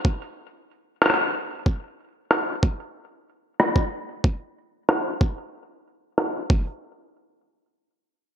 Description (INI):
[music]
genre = IDM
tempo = 93 BPM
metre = 4/4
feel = straight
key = none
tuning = none
[part]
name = electronic kick drum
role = drums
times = 0.0-6.6 s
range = none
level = -20 LUFS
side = equal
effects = overdrive
[part]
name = electronic rim click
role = drums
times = 1.0-6.3 s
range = none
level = -22 LUFS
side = equal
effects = overdrive, low-pass filter on perc, low-pass filter on hats, low-pass filter on snare, gated reverb, ping-pong delay
[sound]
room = moderate plate reverb, RT60 1.6 s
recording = bright 1980s-style digital production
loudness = -22 LUFS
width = side -9 dB against mid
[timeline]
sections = 0.0-6.8 A section; 6.8-8.3 B section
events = filter sweep on drum 0.0-6.8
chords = none